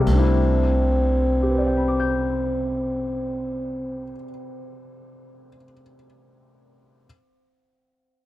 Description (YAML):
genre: jazz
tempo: 58 BPM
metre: 4/4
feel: swing 69% on 8ths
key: C major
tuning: A4 = 436 Hz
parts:
  - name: breathy trombone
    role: melody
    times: 0.0-4.2 s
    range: C4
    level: -24 LUFS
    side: equal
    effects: tape echo
  - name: warm grand piano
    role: accompaniment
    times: 0.0-7.1 s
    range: C3 to G6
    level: -26 LUFS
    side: left 3 dB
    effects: none
  - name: upright bass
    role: bass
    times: 0.0-4.1 s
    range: C2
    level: -24 LUFS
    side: right 1 dB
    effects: none
room: little or no reverb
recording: dry, close 1970s-style studio recording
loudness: -20 LUFS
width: side -15 dB against mid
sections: 0.4-4.5 A section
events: none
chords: 0.4 C69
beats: | 0.39 1.43 2.47 3.50